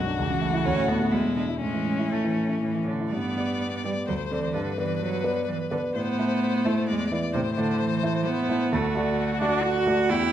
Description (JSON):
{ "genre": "quick classical-period movement for piano trio", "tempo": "114-132 BPM", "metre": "3/4", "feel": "rubato", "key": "A major, G major from 3.1 s", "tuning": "A4 = 441 Hz", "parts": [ { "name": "rich violin", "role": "melody", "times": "0.0-10.3 s", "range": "C#4 to D5", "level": "-32 LUFS", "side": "left 7 dB", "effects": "none" }, { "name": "rich cello", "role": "second line", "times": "0.0-10.3 s", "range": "C3 to F#4", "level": "-27 LUFS", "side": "right 4 dB", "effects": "none" }, { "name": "warm grand piano", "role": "accompaniment", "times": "0.0-10.3 s", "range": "B1 to D5", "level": "-26 LUFS", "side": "equal", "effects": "none" } ], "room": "wet recital hall reverb, RT60 1.4 s", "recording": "none", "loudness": "-23 LUFS", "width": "side -11 dB against mid", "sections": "0.0-3.1 A section; 3.1-10.3 B section", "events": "none", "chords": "0.2 A/C#; 0.6 Bm7/D; 1.1 E7; 1.6 A; 3.1 G; 4.1 D7(no3); 4.5 G; 6.0 Am; 6.9 E7; 7.3 Am; 8.7 D" }